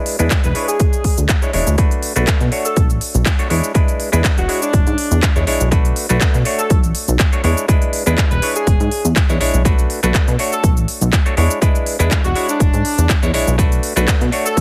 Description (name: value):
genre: filtered disco house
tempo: 122 BPM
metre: 4/4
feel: swing 54% on 16ths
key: unclear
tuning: A4 = 440 Hz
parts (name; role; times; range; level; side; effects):
- bright clav; accompaniment; 0.0-14.6 s; G#3 to C#5; -24 LUFS; equal; phaser, sidechain pumping, low-pass filter
- house drum kit; drums; 0.1-14.6 s; handclaps, hi-hat, shaker; -24 LUFS; equal; none
- plucky analog bass; bass; 0.2-14.6 s; E1 to B2; -19 LUFS; equal; sidechain pumping, low-pass filter
- electronic kick drum; drums; 0.3-14.6 s; none; -18 LUFS; equal; none
- clear horn section; melody; 0.4-14.6 s; D4 to B4; -25 LUFS; equal; sidechain pumping, low-pass filter, dub echo
room: little or no reverb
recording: heavily compressed radio sound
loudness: -16 LUFS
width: mono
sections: 0.0-14.6 A section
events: none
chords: 0.0 E7; 1.8 Bm7; 3.5 E7; 5.7 Bm7; 7.4 E7; 9.7 Bm7; 11.4 E7; 13.6 Bm7